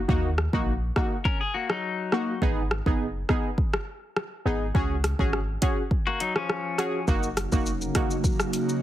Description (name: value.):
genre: dancehall.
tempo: 103 BPM.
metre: 4/4.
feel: straight.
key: F# major.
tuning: A4 = 440 Hz.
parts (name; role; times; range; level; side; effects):
clean 808-style bass; bass; 0.0-7.9 s; E#1 to D#2; -28 LUFS; equal; none.
synth brass stab; accompaniment; 0.1-8.2 s; A#3 to G#4; -28 LUFS; equal; chorus.
afro-pop drum kit; drums; 0.1-8.8 s; hi-hat, kick drum, rim click, shaker; -26 LUFS; equal; none.
clean electric guitar; arpeggios; 1.3-2.4, 6.1-7.0 s; E#3 to A#4; -28 LUFS; left 4 dB; lush chorus.
airy breathy pad; sustained chords; 7.1-8.8 s; C#3 to F#4; -29 LUFS; right 1 dB; chorus, sidechain pumping.
room: little or no reverb.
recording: heavily compressed radio sound, multiband compression.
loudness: -24 LUFS.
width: side -12 dB against mid.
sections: 0.0-7.1 A section; 7.1-8.8 B section.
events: none.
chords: 0.1 D#m; 2.4 G#m; 4.7 C#sus4; 7.1 F#6.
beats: | 0.09 0.67 1.25 1.83 | 2.42 3.00 3.58 4.17 | 4.75 5.33 5.91 6.50 | 7.08 7.66 8.24.